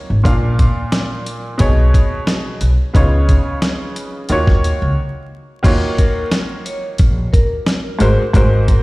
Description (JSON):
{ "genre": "hip hop, boom-bap hip-hop", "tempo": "89 BPM", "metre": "4/4", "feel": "swing 55% on 16ths", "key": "Eb minor, Eb dorian from 5.6 s", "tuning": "A4 = 440 Hz", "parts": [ { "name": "warm upright piano", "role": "accompaniment", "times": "0.0-8.8 s", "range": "Ab2 to F5", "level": "-20 LUFS", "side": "equal", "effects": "high-pass filter, low-pass filter" }, { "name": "upright bass", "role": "bass", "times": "0.1-8.8 s", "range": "Ab1 to Eb2", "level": "-15 LUFS", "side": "equal", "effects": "none" }, { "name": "dusty soul sampler-style drum kit", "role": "drums", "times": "0.2-8.8 s", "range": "crash cymbal, hi-hat, kick drum, snare drum", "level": "-14 LUFS", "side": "equal", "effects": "none" }, { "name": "vibraphone with medium hard mallets", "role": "melody", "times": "6.0-8.8 s", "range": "Bb4 to Db5", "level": "-27 LUFS", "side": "left 1 dB", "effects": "high-pass filter, low-pass filter, analog delay" } ], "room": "light reverb, small room ambience", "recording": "played on a big sound system in a bare room, large studio reverb, vinyl crackle", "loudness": "-13 LUFS", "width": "side -21 dB against mid", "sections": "0.0-5.6 A section; 5.6-8.8 B section", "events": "break 5.0-5.6", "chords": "0.3 Bb; 1.6 B6; 2.9 Db7; 4.3 Ebm7; 8.0 Ab9", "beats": "| 0.25 0.93 1.60 2.27 | 2.95 3.62 4.30 4.97 | 5.64 6.32 6.99 7.67 | 8.34" }